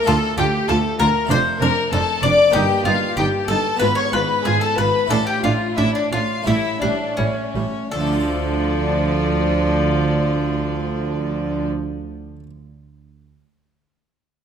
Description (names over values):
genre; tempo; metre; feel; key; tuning
classical, baroque-style concerto movement with solo episodes; 80-98 BPM; 4/4; straight; D minor; A4 = 439 Hz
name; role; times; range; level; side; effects
mandolin; melody; 0.0-12.4 s; C#4 to D5; -22 LUFS; left 3 dB; none
rich chamber violin section; second line; 0.0-11.7 s; C#4 to D5; -24 LUFS; left 4 dB; none
harpsichord; accompaniment; 0.0-12.5 s; D2 to D5; -28 LUFS; equal; none
rich chamber violin section; melody; 0.1-11.7 s; C#5 to D6; -26 LUFS; left 3 dB; none
warm chamber viola section; accompaniment; 0.1-11.7 s; F3 to F4; -26 LUFS; equal; none
rich chamber cello section; bass; 0.1-11.7 s; D2 to D3; -25 LUFS; right 4 dB; none
rich chamber double bass section; bass; 0.1-11.7 s; F1 to D2; -25 LUFS; right 4 dB; none
room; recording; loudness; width
moderate scoring stage reverb, RT60 1.9 s; none; -17 LUFS; side -8 dB against mid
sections
0.0-7.9 A section; 7.9-10.9 B section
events
slowing down 1.3-7.9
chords
0.1 Dm; 1.3 Dm/F; 2.5 Eb/G; 3.8 G#dim7; 5.1 Dm/A; 6.5 A7; 7.9 Dm